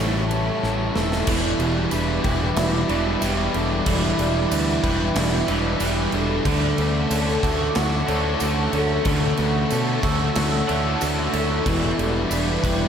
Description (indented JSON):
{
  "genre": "rock, shoegaze and dream pop",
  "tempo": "92 BPM",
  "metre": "4/4",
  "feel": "straight",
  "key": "unclear",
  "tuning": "A4 = 440 Hz",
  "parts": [
    { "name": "dark analog pad", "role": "sustained chords", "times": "0.0-12.9 s", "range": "G3 to E6", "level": "-29 LUFS", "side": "right 1 dB", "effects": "chorus, phaser" },
    { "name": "fingerpicked twelve-string acoustic guitar", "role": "arpeggios", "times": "0.0-12.9 s", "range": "E4 to D5", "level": "-31 LUFS", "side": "left 4 dB", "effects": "analog chorus, analog delay" },
    { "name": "crunchy overdriven guitar", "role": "riff", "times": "0.0-12.9 s", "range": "E2 to D4", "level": "-27 LUFS", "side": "equal", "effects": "wide subtle chorus" },
    { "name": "electric guitar through a small old amp", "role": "riff", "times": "0.0-12.9 s", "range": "A2 to B4", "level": "-28 LUFS", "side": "right 9 dB", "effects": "reverse reverb" },
    { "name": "thick fuzz guitar", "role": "riff", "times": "0.0-12.9 s", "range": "A2 to B4", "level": "-27 LUFS", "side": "left 6 dB", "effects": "distortion, ensemble chorus" },
    { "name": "growling fingered electric bass", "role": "bass", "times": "0.0-12.9 s", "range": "E1 to B2", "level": "-25 LUFS", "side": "equal", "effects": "overdrive" },
    { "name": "gated 80s drum kit", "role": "drums", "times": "0.3-12.8 s", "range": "crash cymbal, kick drum, ride cymbal, snare drum", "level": "-28 LUFS", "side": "right 1 dB", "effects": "none" },
    { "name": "tambourine", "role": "percussion", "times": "1.9-12.5 s", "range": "none", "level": "-36 LUFS", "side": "right 10 dB", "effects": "none" }
  ],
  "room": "moderate lush hall reverb, RT60 1.8 s, small room ambience",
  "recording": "dreamy mix soaked in reverb",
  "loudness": "-19 LUFS",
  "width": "side -8 dB against mid",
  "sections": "0.0-1.3 A section; 1.3-12.9 B section",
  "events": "drum fill 0.6-1.3",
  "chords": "0.0 A7; 1.3 Em7; 6.5 Dmaj7; 11.7 Em7"
}